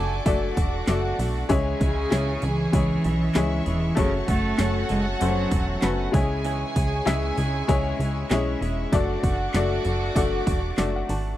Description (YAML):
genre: piano-driven pop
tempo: 97 BPM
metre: 4/4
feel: swing 56% on 16ths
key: unclear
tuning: A4 = 439 Hz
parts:
  - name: warm studio violin section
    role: second line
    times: 0.0-11.4 s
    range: E4 to G#5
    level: -32 LUFS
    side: right 2 dB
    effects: none
  - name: clear upright piano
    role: accompaniment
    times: 0.0-11.4 s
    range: C#3 to A5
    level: -28 LUFS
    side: left 5 dB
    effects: none
  - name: rich symphonic string section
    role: sustained chords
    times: 0.0-11.4 s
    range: G#4 to D6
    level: -38 LUFS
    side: equal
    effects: none
  - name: direct-recorded clean electric guitar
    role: riff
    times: 0.0-11.4 s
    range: F#2 to A4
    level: -35 LUFS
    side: right 9 dB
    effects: none
  - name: plucky analog bass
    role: bass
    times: 0.0-11.3 s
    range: E1 to C#2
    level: -26 LUFS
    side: equal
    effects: none
  - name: pop drum kit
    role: drums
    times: 0.3-11.3 s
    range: handclaps, hi-hat, kick drum, snare drum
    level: -25 LUFS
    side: right 1 dB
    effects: overdrive
  - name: dark cello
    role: melody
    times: 1.8-5.8 s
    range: C#3 to A3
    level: -26 LUFS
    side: right 1 dB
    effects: none
room: small room reverb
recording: dry, close 1970s-style studio recording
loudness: -21 LUFS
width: side -13 dB against mid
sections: 0.0-11.4 A section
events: upright piano fill 10.5-11.4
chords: 0.0 D/F#; 1.5 C#m; 4.0 F#m; 6.1 C#m; 8.9 D/F#